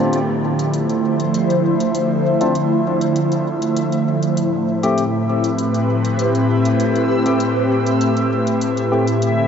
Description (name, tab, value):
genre	ambient dub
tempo	99 BPM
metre	4/4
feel	straight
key	unclear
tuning	A4 = 445 Hz
part	airy breathy pad	sustained chords	0.0-9.5 s	A2 to C5	-16 LUFS	equal	chorus, phaser
part	barky tine electric piano	stabs	0.0-9.0 s	A3 to G4	-25 LUFS	left 2 dB	lush chorus, low-pass filter, dub echo
part	backwards swelling texture	texture	0.8-9.5 s	E4 to E5	-26 LUFS	right 2 dB	built-in reverb, wide subtle chorus
part	electronic hi-hat	drums	0.1-9.3 s	none	-34 LUFS	left 2 dB	dub echo
room	wet huge ambient reverb, RT60 7.6 s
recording	dreamy mix soaked in reverb, nothing above 7.7 kHz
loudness	-15 LUFS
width	side -7 dB against mid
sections	0.0-9.5 A section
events	filter sweep on tine electric piano 0.0-9.5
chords	0.0 Dm7; 4.4 Am7